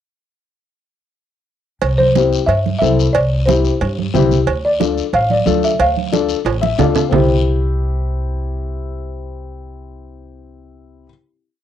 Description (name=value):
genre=latin, cumbia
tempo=181 BPM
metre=4/4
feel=straight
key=C major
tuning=A4 = 439 Hz
part: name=upright bass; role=bass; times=1.8-11.1 s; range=A1 to G2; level=-19 LUFS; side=equal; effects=none
part: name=congas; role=percussion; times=1.8-7.2 s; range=none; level=-20 LUFS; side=right 8 dB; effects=none
part: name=cowbell and timbales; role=percussion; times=1.8-7.2 s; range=none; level=-21 LUFS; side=right 8 dB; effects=none
part: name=guiro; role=percussion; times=1.8-7.2 s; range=none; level=-31 LUFS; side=left 9 dB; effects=none
part: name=folk marimba with soft mallets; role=melody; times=2.0-11.1 s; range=C5 to F5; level=-17 LUFS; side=equal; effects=cassette tape
part: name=dark upright piano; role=accompaniment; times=2.2-11.1 s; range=C4 to F5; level=-19 LUFS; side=left 8 dB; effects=cassette tape
room=moderate studio reverb, RT60 0.6 s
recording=home recording on cassette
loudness=-13 LUFS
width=side -10 dB against mid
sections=1.8-7.1 groove; 7.1-9.8 final chord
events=drum fill 6.5-7.1; upright piano fill 6.5-7.1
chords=1.8 C; 4.5 Dm; 7.1 C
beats=| 1.82 2.15 2.48 2.81 | 3.15 3.48 3.81 4.14 | 4.47 4.80 5.13 5.46 | 5.79 6.12 6.46 6.79 | 7.12 7.45 7.78 8.11 | 8.44 8.77 9.10 9.43